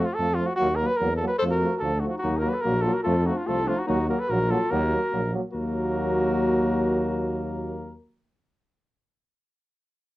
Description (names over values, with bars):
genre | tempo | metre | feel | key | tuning
balkan folk | 146 BPM | 2/4 | straight | Eb hungarian minor | A4 = 440 Hz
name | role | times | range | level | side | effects
warm flugelhorn | melody | 0.0-7.9 s | F4 to C5 | -27 LUFS | right 1 dB | none
clear French horn | accompaniment | 0.0-7.9 s | A3 to Bb3 | -32 LUFS | left 3 dB | none
warm euphonium | accompaniment | 0.0-8.0 s | F3 to Gb3 | -30 LUFS | right 3 dB | none
mellow tuba | bass | 0.2-8.0 s | Bb1 to F2 | -28 LUFS | equal | none
warm clarinet | second line | 1.4-7.9 s | D4 to A4 | -29 LUFS | left 3 dB | none
room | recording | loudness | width
moderate small room reverb, RT60 0.5 s | worn, warbling old tape, cassette tape, warbly pitch drift | -22 LUFS | side -16 dB against mid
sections
0.0-5.5 A section; 5.5-7.2 B section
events
none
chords
0.0 F; 0.6 Ebm; 1.4 F; 2.2 Ebm; 3.1 F; 3.9 Ebm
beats
0.19 | 0.60 1.01 | 1.42 1.83 | 2.24 2.65 | 3.06 3.48 | 3.89 4.30 | 4.71 5.12 | 5.54 5.95 | 6.36 6.78